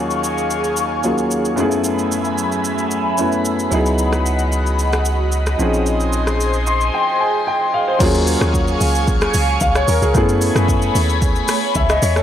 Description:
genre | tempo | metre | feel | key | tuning
amapiano | 112 BPM | 4/4 | straight | unclear | A4 = 442 Hz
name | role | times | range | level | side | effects
warm concert grand piano | accompaniment | 0.0-12.2 s | Eb2 to C6 | -19 LUFS | left 1 dB | none
airy breathy pad | sustained chords | 0.0-12.2 s | Gb3 to Db6 | -21 LUFS | equal | chorus, phaser, sidechain pumping
afro-pop drum kit | drums | 0.1-12.2 s | crash cymbal, hi-hat, kick drum, rim click, shaker | -22 LUFS | equal | none
punchy sub bass | bass | 3.7-6.9 s | Bb1 to Db2 | -19 LUFS | equal | none
deep log drum bass | bass | 8.0-12.2 s | Db2 to Gb2 | -18 LUFS | equal | none
room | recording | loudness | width
light reverb, digital ambience | dry, gritty hardware recording, transformer saturation | -15 LUFS | side -10 dB against mid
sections
0.0-8.0 A section; 8.0-12.2 B section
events
grand piano fill 6.4-8.0; drop 8.0-12.2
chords
0.0 Ebm11; 1.6 Gbm11; 3.7 Dbm11; 5.6 Bbm11; 8.0 Ebm11; 10.1 Gbm11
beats
0.50 1.04 | 1.57 2.11 2.65 3.18 | 3.72 4.25 4.79 5.33 | 5.86 6.40 6.93 7.47 | 8.00 8.54 9.07 9.61 | 10.15 10.68 11.22 11.75

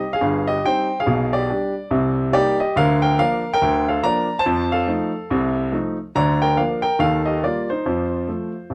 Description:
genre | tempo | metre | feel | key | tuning
jazz, stride piano | 141 BPM | 4/4 | swing 60% on 8ths | Bb major | A4 = 440 Hz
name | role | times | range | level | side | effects
warm grand piano | solo | 0.0-8.7 s | G1 to Bb5 | -20 LUFS | equal | none
room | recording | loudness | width
moderate club reverb, RT60 0.6 s | none | -20 LUFS | mono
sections
0.0-8.7 A section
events
none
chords
0.0 Cm; 1.1 G/B; 1.9 Cm7; 2.8 Bb/D; 4.5 F7; 5.3 F7/C; 6.1 Bb/D; 7.0 Eb; 7.8 F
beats
0.21 0.63 | 1.05 1.48 1.90 2.33 | 2.75 3.18 3.60 4.03 | 4.45 4.88 5.30 5.72 | 6.15 6.57 7.00 7.42 | 7.84 8.27 8.69

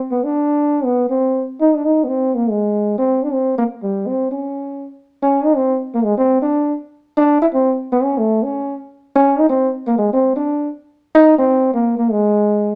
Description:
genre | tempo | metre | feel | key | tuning
jazz | 242 BPM | 4/4 | swing 57% on 8ths | unclear | A4 = 440 Hz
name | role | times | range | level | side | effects
mellow trombone | solo | 0.1-12.8 s | G3 to Fb4 | -16 LUFS | equal | none
room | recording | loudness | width
moderate studio reverb, RT60 0.7 s | none | -17 LUFS | mono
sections
0.0-5.0 A section; 5.0-12.8 B section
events
none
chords
none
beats
| 0.09 0.34 0.58 0.83 | 1.08 1.32 1.57 1.82 | 2.07 2.31 2.56 2.81 | 3.06 3.30 3.55 3.80 | 4.05 4.29 4.54 4.79 | 5.04 5.28 5.53 5.78 | 6.03 6.27 6.52 6.77 | 7.01 7.26 7.51 7.75 | 8.00 8.25 8.50 8.74 | 8.99 9.24 9.49 9.73 | 9.98 10.23 10.47 10.72 | 10.97 11.22 11.46 11.71 | 11.96 12.21 12.46 12.70

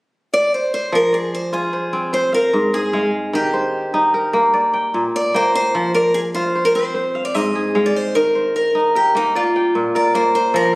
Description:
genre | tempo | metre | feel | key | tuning
west african traditional, West African string and xylophone music | 100 BPM (dotted quarters) | 12/8 | straight | F dorian | A4 = 439 Hz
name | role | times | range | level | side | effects
picked old ladder-braced acoustic guitar | melody | 0.3-10.7 s | Eb4 to Eb5 | -18 LUFS | equal | none
kora | arpeggios | 0.9-10.8 s | Ab2 to G5 | -17 LUFS | equal | none
room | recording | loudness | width
moderate recital hall reverb, RT60 1.3 s | recorded on a phone in the room, studio reverb | -15 LUFS | side -25 dB against mid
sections
0.9-10.5 A section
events
none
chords
0.0 N.C.; 0.9 Fm; 2.1 Ab; 3.3 Eb; 4.5 Bb; 5.7 F5; 6.9 Ab; 8.1 Eb5; 9.3 Bb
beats
0.32 | 0.92 1.53 2.13 2.73 | 3.34 3.94 4.54 5.14 | 5.75 6.35 6.95 7.55 | 8.15 8.75 9.35 9.95 | 10.54

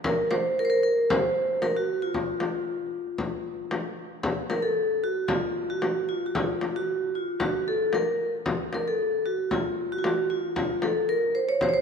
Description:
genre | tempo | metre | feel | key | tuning
Arabic maqam ensemble | 114 BPM | 4/4 | straight | F maqam hijaz | A4 = 440 Hz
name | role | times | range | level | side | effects
vibraphone with medium hard mallets | melody | 0.0-11.8 s | F4 to Db5 | -25 LUFS | equal | none
frame drum | percussion | 0.0-11.7 s | none | -30 LUFS | left 3 dB | none
room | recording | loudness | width
moderate concert hall reverb, RT60 2.4 s | minimal, uncompressed stereo recording | -24 LUFS | side -6 dB against mid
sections
0.0-4.2 A section; 4.2-11.8 B section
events
none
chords
none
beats
| 0.04 0.56 1.09 1.61 | 2.14 2.66 3.19 3.71 | 4.24 4.76 5.29 5.82 | 6.34 6.87 7.40 7.92 | 8.45 8.98 9.51 10.03 | 10.56 11.09 11.62

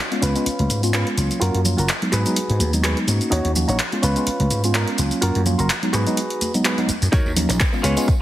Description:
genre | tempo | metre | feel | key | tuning
filtered disco house | 126 BPM | 4/4 | swing 55% on 16ths | G# dorian | A4 = 442 Hz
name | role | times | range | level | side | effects
mellow tine electric piano | accompaniment | 0.1-8.1 s | F#3 to F#4 | -23 LUFS | equal | phaser, sidechain pumping, low-pass filter
direct-recorded clean electric guitar | riff | 0.1-8.1 s | C#4 to C#5 | -26 LUFS | right 1 dB | sidechain pumping, low-pass filter
punchy analog drum machine | drums | 0.1-8.2 s | handclaps, hi-hat, shaker | -24 LUFS | equal | sidechain pumping on hats, sidechain pumping on perc
tambourine and congas | percussion | 0.1-8.2 s | none | -30 LUFS | right 2 dB | none
vintage slap bass | bass | 0.2-8.1 s | F#1 to G#2 | -21 LUFS | equal | sidechain pumping, low-pass filter
electronic kick drum | drums | 7.1-8.2 s | none | -18 LUFS | equal | none
room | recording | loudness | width
light reverb, digital ambience | heavily compressed radio sound | -17 LUFS | side -14 dB against mid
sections
0.0-7.1 A section; 7.1-8.2 B section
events
filter sweep 0.0-7.1; drop 7.1-8.2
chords
0.2 C#7; 1.4 F#maj7; 2.1 G#m7; 3.3 D#m7; 4.0 C#7; 5.2 F#maj7; 5.9 G#m7; 7.1 D#m7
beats
0.46 0.94 | 1.41 1.89 2.37 2.84 | 3.32 3.79 4.27 4.75 | 5.22 5.70 6.17 6.65 | 7.13 7.60 8.08

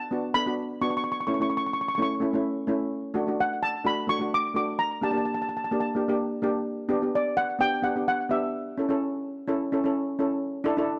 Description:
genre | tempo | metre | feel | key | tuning
calypso | 128 BPM | 4/4 | swing 54% on 16ths | D major | A4 = 440 Hz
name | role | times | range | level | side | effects
steel pan | melody | 0.0-9.9 s | D5 to D6 | -29 LUFS | equal | slapback echo
steel pan | accompaniment | 0.1-11.0 s | A3 to A4 | -29 LUFS | equal | none
room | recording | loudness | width
light reverb, studio ambience | dry, close 1970s-style studio recording | -27 LUFS | mono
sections
0.0-10.4 A section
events
none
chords
0.0 Bm7; 1.0 A; 2.9 D; 4.8 Gm; 6.7 G; 8.5 A; 10.4 Dsus2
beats
0.10 0.57 | 1.04 1.51 1.98 2.45 | 2.92 3.39 3.86 4.33 | 4.80 5.27 5.74 6.20 | 6.67 7.14 7.61 8.08 | 8.55 9.02 9.49 9.96 | 10.42 10.89

